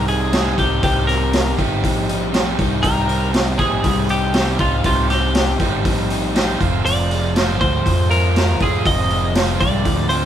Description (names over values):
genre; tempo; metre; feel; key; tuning
indie rock; 120 BPM; 4/4; straight; unclear; A4 = 440 Hz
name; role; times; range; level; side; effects
twelve-string electric guitar; melody; 0.0-10.3 s; F4 to Eb5; -21 LUFS; equal; none
crunchy overdriven guitar; riff; 0.0-10.3 s; F2 to G4; -23 LUFS; right 6 dB; none
overdriven electric guitar; riff; 0.0-10.3 s; F2 to G4; -25 LUFS; left 8 dB; none
growling fingered electric bass; bass; 0.0-10.3 s; F1 to F2; -21 LUFS; equal; overdrive
raw garage drum kit; drums; 0.1-10.2 s; hi-hat, kick drum, snare drum; -20 LUFS; equal; none
room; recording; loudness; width
light reverb; band playing live in one room; -15 LUFS; side -10 dB against mid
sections
0.0-10.3 A section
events
none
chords
0.0 Cm7; 6.6 Fm